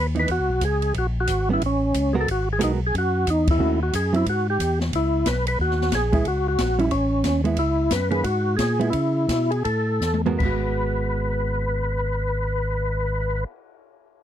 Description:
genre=soul jazz organ trio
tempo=154-181 BPM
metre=4/4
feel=swing 63% on 8ths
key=G# minor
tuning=A4 = 440 Hz
part: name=percussive tonewheel organ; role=melody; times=0.0-13.4 s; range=C#4 to B4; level=-23 LUFS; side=equal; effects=slow rotary speaker, overdrive, chorus vibrato
part: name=tonewheel organ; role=bass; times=0.0-13.4 s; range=G#1 to C#3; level=-24 LUFS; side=equal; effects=overdrive, chorus vibrato, slow rotary speaker
part: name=hollow-body jazz guitar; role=accompaniment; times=0.1-13.5 s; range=D#3 to A#4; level=-25 LUFS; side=right 5 dB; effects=none
part: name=open jazz drum kit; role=drums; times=0.2-13.4 s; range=crash cymbal, cymbal swell, hi-hat, kick drum, ride cymbal, snare drum, toms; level=-28 LUFS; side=left 1 dB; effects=none
room=little or no reverb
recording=dry, close 1970s-style studio recording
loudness=-20 LUFS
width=side -10 dB against mid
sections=0.0-4.9 A section; 4.9-10.4 B section; 10.4-13.5 C section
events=band accent 3.4; slowing down 7.6-10.4; drum fill 10.0-10.4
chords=0.0 C#m9; 0.9 G#m11; 1.6 Aadd9; 2.3 G#m9; 3.6 D#m7b5; 4.3 Emadd9; 4.9 C#m7; 5.6 D#sus4; 6.2 C#m; 6.9 A; 7.6 C#m; 8.2 G#m9; 8.9 C#m7; 9.6 A5; 10.4 G#m7

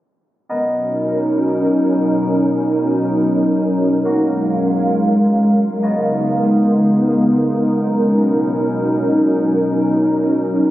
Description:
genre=hip hop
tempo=free time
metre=none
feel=none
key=unclear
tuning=A4 = 440 Hz
part: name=glassy FM pad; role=sustained chords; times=0.8-10.7 s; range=F#2 to E#5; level=-14 LUFS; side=equal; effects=ensemble chorus, built-in reverb
part: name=harpsichord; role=texture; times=0.5-10.7 s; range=A#3 to E#5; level=-25 LUFS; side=equal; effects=stereo widening
room=moderate huge ambient reverb, RT60 8.4 s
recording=recorded on a phone in the room, studio reverb, low-pass filter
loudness=-14 LUFS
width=side -14 dB against mid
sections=0.5-10.7 A section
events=none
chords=0.5 Bmaj7; 4.1 F#maj7; 5.8 C#13; 7.6 Bmaj7

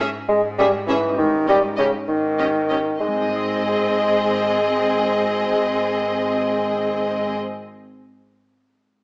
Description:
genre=cinematic, playful, whimsical film cue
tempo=67 BPM (dotted quarters)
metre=6/8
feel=straight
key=Ab major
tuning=A4 = 440 Hz
part: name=warm studio violin section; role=melody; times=0.0-7.3 s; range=Eb5 to Fb5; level=-28 LUFS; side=equal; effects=none
part: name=warm studio violin section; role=second line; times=0.0-7.4 s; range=G4 to Ab4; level=-27 LUFS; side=left 1 dB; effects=none
part: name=warm studio viola section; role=accompaniment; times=0.0-7.4 s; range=C4 to Db4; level=-27 LUFS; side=equal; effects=none
part: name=concert harp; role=arpeggios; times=0.0-8.2 s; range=Ab2 to Eb5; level=-32 LUFS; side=left 1 dB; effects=none
part: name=clear studio cello section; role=bass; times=0.0-7.4 s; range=Ab2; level=-35 LUFS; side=equal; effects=none
part: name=mellow bassoon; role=accompaniment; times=0.3-7.4 s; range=Db3 to Ab3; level=-19 LUFS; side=equal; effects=none
part: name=rich studio double bass section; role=bass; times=1.2-7.4 s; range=Ab1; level=-29 LUFS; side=equal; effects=none
room=wet recital hall reverb, RT60 1.2 s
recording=small speaker sound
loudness=-17 LUFS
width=side -28 dB against mid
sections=0.0-3.0 A section; 3.0-6.6 B section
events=none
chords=0.0 Dbm/Ab; 1.2 Eb7/Ab; 3.0 Ab

